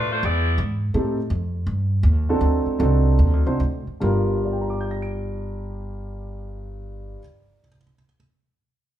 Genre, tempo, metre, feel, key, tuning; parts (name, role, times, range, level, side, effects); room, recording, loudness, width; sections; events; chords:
jazz, big band swing; 142-167 BPM; 4/4; swing 65% on 8ths; G minor; A4 = 441 Hz
clear saxophone section; melody; 0.0-0.6 s; A3 to D5; -24 LUFS; left 1 dB
upright bass; bass; 0.0-7.1 s; G1 to A2; -22 LUFS; equal
warm grand piano; accompaniment; 0.9-8.2 s; G2 to D7; -25 LUFS; right 1 dB
moderate large studio reverb, RT60 1.1 s; band playing live in one room; -19 LUFS; side -11 dB against mid
1.0-4.0 A section; 4.0-7.4 B section
slowing down 1.0-4.0
0.2 E7; 1.0 Am7b5; 2.4 D7b9; 4.0 Gm7